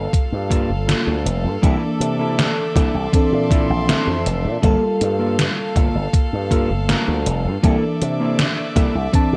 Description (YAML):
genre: vaporwave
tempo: 80 BPM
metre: 4/4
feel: straight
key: G dorian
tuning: A4 = 441 Hz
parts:
  - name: FM electric piano with soft pad layer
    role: accompaniment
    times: 0.0-9.4 s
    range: E3 to A5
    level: -26 LUFS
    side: equal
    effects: subtle chorus, tape echo
  - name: rich chamber string section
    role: sustained chords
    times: 0.0-9.4 s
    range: A4 to C6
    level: -30 LUFS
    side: equal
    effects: none
  - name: slap bass with an envelope filter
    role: bass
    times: 0.0-9.4 s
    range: F1 to C3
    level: -24 LUFS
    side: equal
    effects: none
  - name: mellow electric guitar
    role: riff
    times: 0.1-9.2 s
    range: Bb3 to C5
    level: -28 LUFS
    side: equal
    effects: subtle chorus, tape echo
  - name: electronic kick drum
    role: drums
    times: 0.1-9.3 s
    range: none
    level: -20 LUFS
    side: equal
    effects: overdrive, vintage 12-bit sampler grit
  - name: gated 80s digital drum machine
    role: drums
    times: 0.1-9.3 s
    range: hi-hat, snare drum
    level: -24 LUFS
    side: equal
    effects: gated reverb, gated reverb snare, overdrive, vintage 12-bit sampler grit
room: light reverb, digital ambience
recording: none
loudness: -19 LUFS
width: mono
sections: 0.0-9.4 A section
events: none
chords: 0.0 Gm9; 1.6 C13; 3.1 Bbmaj9#11; 4.6 Gm9; 7.6 C13